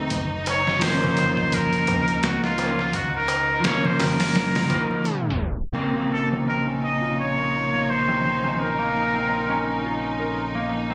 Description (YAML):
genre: trip hop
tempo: 85 BPM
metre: 4/4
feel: swing 58% on 16ths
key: Bb minor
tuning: A4 = 440 Hz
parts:
  - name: electric guitar at the edge of break-up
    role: accompaniment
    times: 0.0-10.9 s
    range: Db3 to Eb4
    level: -28 LUFS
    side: equal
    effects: harmonic tremolo, tape echo
  - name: clear symphonic string section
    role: sustained chords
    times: 0.0-10.9 s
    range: Eb4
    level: -35 LUFS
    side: equal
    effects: none
  - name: round analog bass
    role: bass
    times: 0.0-10.9 s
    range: Gb1 to Db2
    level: -35 LUFS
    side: equal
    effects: tube saturation
  - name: trip hop sampler-style drum kit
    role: drums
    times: 0.1-10.9 s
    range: hi-hat, kick drum, snare drum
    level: -30 LUFS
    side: equal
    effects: low-pass filter on hats, vintage 12-bit sampler grit, low-pass filter on kick, low-pass filter on snare, low-pass filter on room
  - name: darbuka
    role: percussion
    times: 0.1-5.7 s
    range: none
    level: -34 LUFS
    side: equal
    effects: none
  - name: trumpet with straight mute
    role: melody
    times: 0.5-10.0 s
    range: F4 to Eb5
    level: -26 LUFS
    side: equal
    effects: tape echo
  - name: concert harp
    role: arpeggios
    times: 6.0-10.9 s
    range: Bb3 to Bb4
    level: -31 LUFS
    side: equal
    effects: low-pass filter, tape echo
room: light reverb, small room ambience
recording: recorded on a phone in the room, club reverb, tape stop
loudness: -23 LUFS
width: mono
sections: 0.0-5.8 A section; 5.8-10.9 B section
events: tape stop 5.1-5.8; filter sweep on harp 5.8-10.9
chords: 0.1 Gbmaj7; 5.8 Bbmadd9